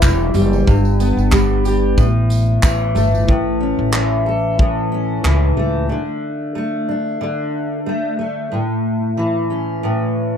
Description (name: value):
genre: acoustic pop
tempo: 92 BPM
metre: 4/4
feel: swing 55% on 16ths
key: unclear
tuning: A4 = 445 Hz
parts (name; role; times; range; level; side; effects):
- fingerpicked steel-string acoustic guitar; accompaniment; 0.0-10.4 s; E2 to A4; -18 LUFS; left 1 dB; double-tracked left and right
- upright bass; bass; 0.0-5.9 s; E1 to C#2; -18 LUFS; equal; none
- natural country drum kit; drums; 0.0-5.4 s; handclaps, kick drum, tambourine; -17 LUFS; equal; none
- tambourine; percussion; 0.0-3.3 s; none; -36 LUFS; right 23 dB; none
room: light reverb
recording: dry, close 1970s-style studio recording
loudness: -15 LUFS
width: side -8 dB against mid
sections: 0.0-3.3 A section; 3.3-5.9 B section; 5.9-10.4 C section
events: none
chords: 0.0 Em; 0.7 G; 2.0 A5; 3.3 A; 5.9 D5; 8.5 A